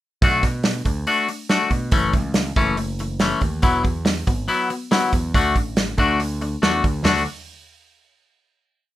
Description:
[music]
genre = indie rock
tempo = 140 BPM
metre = 4/4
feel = straight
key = D major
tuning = A4 = 439 Hz
[part]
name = twangy electric guitar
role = riff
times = 0.2-7.2 s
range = E3 to F#4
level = -21 LUFS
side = left 3 dB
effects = none
[part]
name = overdriven picked electric bass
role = bass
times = 0.2-7.3 s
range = E1 to B2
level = -26 LUFS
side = right 1 dB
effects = none
[part]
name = loose indie drum kit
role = drums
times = 0.2-7.2 s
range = hi-hat, kick drum, snare drum, toms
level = -21 LUFS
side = right 1 dB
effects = none
[sound]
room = little or no reverb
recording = rough home demo mix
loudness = -18 LUFS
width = side -14 dB against mid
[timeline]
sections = 0.2-7.1 verse; 7.1-8.8 final chord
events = none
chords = 0.2 Bm7; 1.9 F#m7; 3.6 Esus2; 5.4 D

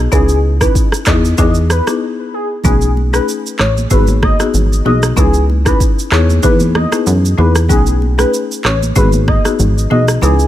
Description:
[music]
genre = afrobeats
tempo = 95 BPM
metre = 4/4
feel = swing 55% on 16ths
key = unclear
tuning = A4 = 440 Hz
[part]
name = plucky analog bass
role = bass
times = 0.0-10.5 s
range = G#1 to F#2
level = -13 LUFS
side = equal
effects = none
[part]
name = warm velvety synth lead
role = melody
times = 0.1-10.5 s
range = G#4 to D#5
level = -19 LUFS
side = equal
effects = chorus, ping-pong delay
[part]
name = folk marimba with medium mallets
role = accompaniment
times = 0.1-10.5 s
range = A3 to B4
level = -18 LUFS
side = left 6 dB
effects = none
[part]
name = afro-pop drum kit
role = drums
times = 0.1-10.5 s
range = handclaps, kick drum, rim click, shaker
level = -15 LUFS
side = right 1 dB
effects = none
[part]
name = congas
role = percussion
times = 2.6-10.4 s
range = none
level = -24 LUFS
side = right 5 dB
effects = none
[sound]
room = little or no reverb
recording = none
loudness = -10 LUFS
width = side -13 dB against mid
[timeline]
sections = 0.0-10.5 A section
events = break 2.0-2.6; kick muted 10.2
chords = 0.1 C#m9; 1.1 Emaj7; 2.6 B13; 3.9 G#m7; 5.2 C#m9; 6.1 Emaj7; 7.7 B13; 9.0 G#m7

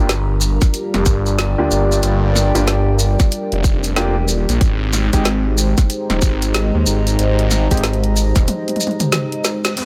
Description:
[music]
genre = glitch hop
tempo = 93 BPM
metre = 4/4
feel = swing 62% on 16ths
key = unclear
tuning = A4 = 440 Hz
[part]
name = dark analog pad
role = sustained chords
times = 0.2-9.8 s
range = G3 to C5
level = -26 LUFS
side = equal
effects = chorus, sidechain pumping
[part]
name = warm grand piano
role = stabs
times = 0.0-7.8 s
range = Ab3 to G4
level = -26 LUFS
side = equal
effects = vintage 12-bit sampler grit, sidechain pumping, low-pass filter, dub echo
[part]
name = phased detuned saw bass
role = bass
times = 0.0-8.5 s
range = Eb1 to Eb2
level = -19 LUFS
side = equal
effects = phaser
[part]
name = warbly tape-like pad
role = texture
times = 0.2-9.8 s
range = Ab3 to Bb5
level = -28 LUFS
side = equal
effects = chorus, built-in reverb, phaser, sidechain pumping
[part]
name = drum and bass drum kit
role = drums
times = 0.1-9.8 s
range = hi-hat, snare drum, toms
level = -23 LUFS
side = equal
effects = none
[part]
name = maracas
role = percussion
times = 0.1-9.8 s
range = none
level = -27 LUFS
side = equal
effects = none
[part]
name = electronic kick drum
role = drums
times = 0.6-8.5 s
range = none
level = -17 LUFS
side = equal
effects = none
[part]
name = downlifter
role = sound effects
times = 9.8 s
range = none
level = -24 LUFS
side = equal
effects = none
[sound]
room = light reverb, digital ambience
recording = none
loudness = -17 LUFS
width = mono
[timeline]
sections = 0.0-9.8 A section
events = break 8.5-9.8; drum fill 8.5-9.8; band accent 9.6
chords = 0.0 Gm7; 4.6 Abmaj7

